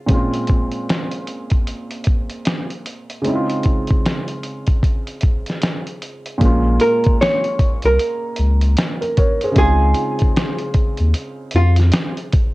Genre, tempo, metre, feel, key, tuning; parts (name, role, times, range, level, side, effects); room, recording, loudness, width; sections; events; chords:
lo-fi hip hop; 76 BPM; 4/4; swing 62% on 16ths; Bb minor; A4 = 442 Hz
felt-muted upright piano; accompaniment; 0.0-12.5 s; Bb2 to Db5; -23 LUFS; right 1 dB; cassette tape, low-pass filter
lo-fi sampler-style drum kit; drums; 0.1-12.5 s; hi-hat, kick drum, snare drum; -18 LUFS; equal; cassette tape
warm sub bass; bass; 6.4-11.9 s; Bb1 to F2; -14 LUFS; equal
archtop guitar, miked and amplified; melody; 6.8-11.8 s; F4 to Db5; -19 LUFS; right 1 dB; low-pass filter, cassette tape
light reverb; home recording on cassette; -15 LUFS; side -20 dB against mid
0.0-6.4 A section; 6.4-12.5 B section
0.1 Bbm9; 3.3 Dbmaj9; 6.4 Bbm7; 9.6 Dbmaj9